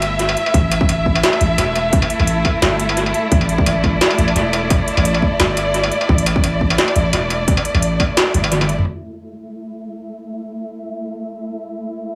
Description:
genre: half-time drum and bass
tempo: 173 BPM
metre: 4/4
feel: swing 54% on 16ths, half-time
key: unclear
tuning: A4 = 445 Hz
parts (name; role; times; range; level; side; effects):
- rich symphonic string section; sustained chords; 0.0-12.2 s; A3 to E5; -23 LUFS; equal; sidechain pumping
- long sustained 808-style bass; bass; 0.0-8.9 s; E1 to A1; -22 LUFS; equal; none
- industrial drum kit; drums; 0.0-8.8 s; hi-hat, snare drum, struck metal, toms; -21 LUFS; equal; analog delay
- electronic kick drum; drums; 0.5-8.1 s; none; -20 LUFS; equal; none
room: moderate echo chamber reverb, RT60 1.7 s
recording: echo-heavy mix, low-pass filter, small room ambience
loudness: -16 LUFS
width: mono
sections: 0.0-8.9 A section; 8.9-12.2 B section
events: drum fill 8.5-8.9; filter sweep 8.9-12.2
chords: 0.0 A5

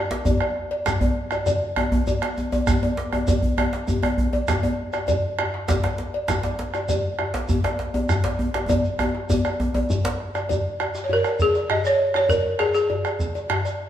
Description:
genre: west african traditional, West African drum ensemble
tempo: 133 BPM (dotted quarters)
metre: 12/8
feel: straight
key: unclear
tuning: A4 = 439 Hz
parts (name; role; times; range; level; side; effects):
- bombo; percussion; 0.1-13.7 s; none; -27 LUFS; right 2 dB; none
- djembe; percussion; 0.1-13.9 s; none; -29 LUFS; left 3 dB; none
- djembe; percussion; 0.1-10.2 s; none; -24 LUFS; equal; none
- cowbell; percussion; 0.3-13.8 s; none; -28 LUFS; left 1 dB; none
- shekere; percussion; 0.3-13.8 s; none; -33 LUFS; right 1 dB; none
- balafon; melody; 11.0-13.2 s; Ab4 to Eb5; -20 LUFS; equal; none
room: wet stone room reverb, RT60 1.3 s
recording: band playing live in one room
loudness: -20 LUFS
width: side -10 dB against mid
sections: 0.0-10.5 A section; 10.5-13.9 B section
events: drum fill 8.7-10.5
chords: none

